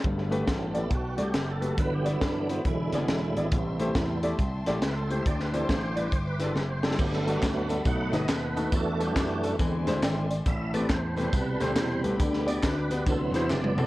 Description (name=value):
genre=uptempo gospel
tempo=138 BPM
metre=4/4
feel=swing 64% on 8ths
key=G major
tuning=A4 = 443 Hz
part: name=warm concert grand piano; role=accompaniment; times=0.0-13.9 s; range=G2 to G5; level=-31 LUFS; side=left 1 dB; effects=none
part: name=tonewheel organ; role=sustained chords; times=0.0-13.9 s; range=B2 to F#5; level=-32 LUFS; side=right 2 dB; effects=slow rotary speaker, chorus vibrato
part: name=vintage slap bass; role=bass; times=0.0-13.9 s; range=E1 to G2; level=-31 LUFS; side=equal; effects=none
part: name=crisp fusion drum kit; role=drums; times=0.0-13.9 s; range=crash cymbal, hi-hat, kick drum, snare drum, toms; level=-30 LUFS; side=equal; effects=none
part: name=warm studio string section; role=sustained chords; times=0.1-13.9 s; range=A4 to D6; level=-41 LUFS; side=left 1 dB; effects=none
part: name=tambourine and handclaps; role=percussion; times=7.0-13.9 s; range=none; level=-43 LUFS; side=equal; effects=none
room=moderate large studio reverb, RT60 1.4 s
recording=worn, warbling old tape, cassette tape, warbly pitch drift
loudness=-25 LUFS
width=side -18 dB against mid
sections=0.0-13.9 A section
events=tonewheel organ solo 0.0-13.9; drum fill 6.6-7.0, 13.5-13.9; grand piano fill 9.8-10.5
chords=0.0 Gmaj9; 1.8 Cmaj9#11/G (rootless); 2.7 E7; 3.5 Am7; 5.3 D9sus4; 7.0 Gmaj9; 7.9 B7; 8.7 Em11; 9.6 Eaug7; 10.5 Am9; 12.2 G/D; 13.1 D13